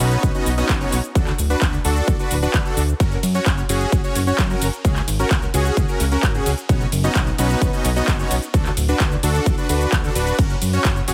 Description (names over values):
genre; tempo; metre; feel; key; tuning
EDM, festival progressive house; 130 BPM; 4/4; straight; unclear; A4 = 440 Hz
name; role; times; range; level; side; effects
supersaw chords; riff; 0.0-11.1 s; B3 to D#5; -25 LUFS; equal; sidechain pumping, delay
fat analog bass; bass; 0.0-11.1 s; D1 to F#2; -24 LUFS; equal; sidechain pumping
big-room dance drum kit; drums; 0.0-11.1 s; crash cymbal, handclaps, hi-hat, ride cymbal, shaker; -28 LUFS; equal; none
electronic kick drum; drums; 0.2-10.9 s; none; -22 LUFS; equal; none
room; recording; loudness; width
digital ambience; heavily compressed radio sound; -19 LUFS; mono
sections
0.0-11.1 A section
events
none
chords
0.0 Badd9; 1.2 D; 3.0 F#; 4.8 C#sus4; 6.7 Badd9; 8.5 D; 10.4 F#